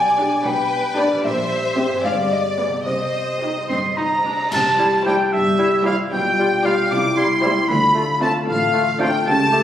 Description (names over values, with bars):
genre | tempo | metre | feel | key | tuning
cinematic, playful, whimsical film cue | 76 BPM (dotted quarters) | 6/8 | straight | C minor, C major from 4.5 s | A4 = 440 Hz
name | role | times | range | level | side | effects
celesta | melody | 0.0-3.6 s | C5 to Ab5 | -22 LUFS | left 2 dB | none
rich studio violin section | melody | 0.0-9.6 s | C5 to D6 | -25 LUFS | left 2 dB | none
rich studio violin section | second line | 0.0-9.2 s | F4 to Eb5 | -25 LUFS | equal | none
concert harp | arpeggios | 0.0-9.6 s | G2 to F5 | -29 LUFS | left 4 dB | none
clear studio cello section | bass | 0.0-9.6 s | G2 to D3 | -28 LUFS | right 2 dB | none
rich studio double bass section | bass | 0.0-9.6 s | G1 to D2 | -32 LUFS | right 3 dB | none
rich studio viola section | accompaniment | 0.2-9.2 s | G3 to Ab4 | -27 LUFS | right 1 dB | none
cymbal swell, clash cymbals and concert bass drum | percussion | 1.2-5.5 s | none | -32 LUFS | equal | none
bright concert flute | second line | 3.7-9.6 s | E5 to D6 | -26 LUFS | left 1 dB | none
clear oboe | second line | 3.7-9.6 s | E5 to D6 | -21 LUFS | right 2 dB | none
mellow French horn section | sustained chords | 4.5-9.6 s | G3 to G4 | -22 LUFS | left 2 dB | none
warm clarinet | second line | 4.8-9.6 s | E4 to G4 | -28 LUFS | equal | none
warm bassoon | accompaniment | 4.8-9.6 s | G3 to A3 | -26 LUFS | right 1 dB | none
room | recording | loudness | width
wet concert hall reverb, RT60 2.0 s | recorded on a phone in the room, club reverb | -16 LUFS | side -10 dB against mid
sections
0.0-4.5 A section; 4.5-9.6 B section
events
band accent 4.5-5.1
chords
0.0 G/B; 1.2 C7/Bb; 2.1 G; 2.9 Cm; 4.5 C; 6.1 G7/B; 6.9 C; 7.7 Dm7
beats
0.46 | 1.25 2.05 | 2.87 3.69 | 4.53 5.33 | 6.12 6.91 | 7.70 8.49 | 9.27